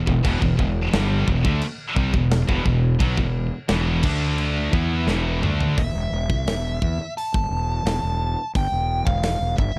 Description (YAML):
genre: heavy metal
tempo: 87 BPM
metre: 4/4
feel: straight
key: E minor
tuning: A4 = 440 Hz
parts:
  - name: distorted electric guitar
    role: riff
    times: 0.0-5.8 s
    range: E2 to E4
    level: -30 LUFS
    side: equal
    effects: distortion
  - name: heavy high-gain guitar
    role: riff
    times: 0.0-5.8 s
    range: E2 to E4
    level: -31 LUFS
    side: equal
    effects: distortion
  - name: scooped high-gain guitar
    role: riff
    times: 0.0-5.8 s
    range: E2 to E4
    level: -29 LUFS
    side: equal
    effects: distortion
  - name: fuzz fingered electric bass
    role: bass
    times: 0.0-9.8 s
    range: E1 to E2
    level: -26 LUFS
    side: equal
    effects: overdrive
  - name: tight metal drum kit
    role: drums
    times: 0.1-9.7 s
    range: crash cymbal, hi-hat, kick drum, snare drum, toms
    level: -27 LUFS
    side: equal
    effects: none
  - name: high-gain lead guitar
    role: melody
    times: 5.8-9.8 s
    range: E5 to A5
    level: -29 LUFS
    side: equal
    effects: distortion
room: little or no reverb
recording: dark, warm production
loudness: -22 LUFS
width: mono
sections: 0.0-5.8 A section; 5.8-9.8 B section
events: drum fill 5.1-5.8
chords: 0.0 Em; 4.0 D5; 4.7 E5; 5.8 N.C.